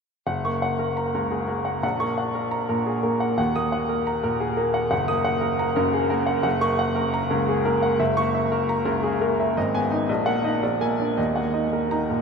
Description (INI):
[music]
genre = classical, virtuoso piano study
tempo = 116 BPM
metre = 3/4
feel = rubato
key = F# major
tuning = A4 = 440 Hz
[part]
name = bright baby grand piano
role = solo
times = 0.3-12.2 s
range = F#1 to D#6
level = -21 LUFS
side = equal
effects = none
[sound]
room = wet huge ambient reverb, RT60 7.5 s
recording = in a vast, echoing space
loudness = -21 LUFS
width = side -5 dB against mid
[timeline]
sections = 0.3-12.2 A section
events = none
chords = 0.3 F#; 1.8 F#/A#; 3.4 D#m; 4.9 D#m/F#; 6.4 Gb; 8.0 Gb7; 9.6 Abm; 10.1 Ebm/Bb; 10.6 Bb7; 11.2 Ebm